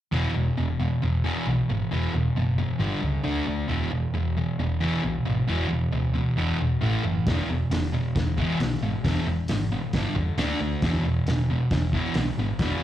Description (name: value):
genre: garage rock duo or trio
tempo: 135 BPM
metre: 4/4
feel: straight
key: unclear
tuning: A4 = 440 Hz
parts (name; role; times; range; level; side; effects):
- fuzz guitar; riff; 0.1-12.8 s; E2 to D4; -25 LUFS; equal; distortion
- hollow-body short-scale picked electric bass; bass; 0.1-12.7 s; E1 to E2; -27 LUFS; equal; none
- cloth-damped thuddy drum kit; drums; 7.3-12.7 s; hi-hat, kick drum, snare drum; -28 LUFS; equal; none
room: light reverb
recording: live gig heard through the venue's PA, club reverb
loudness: -23 LUFS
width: side -12 dB against mid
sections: 0.1-12.8 A section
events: none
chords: 0.1 E5; 2.8 G5; 3.3 D5; 3.7 E5; 6.8 A5; 7.3 E; 9.9 G5; 10.4 D5; 10.8 E5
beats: | 0.13 0.58 1.03 1.47 | 1.92 2.37 2.81 3.26 | 3.71 4.15 4.60 5.04 | 5.49 5.94 6.38 6.83 | 7.27 7.72 8.16 8.61 | 9.05 9.49 9.94 10.38 | 10.83 11.27 11.71 12.16 | 12.60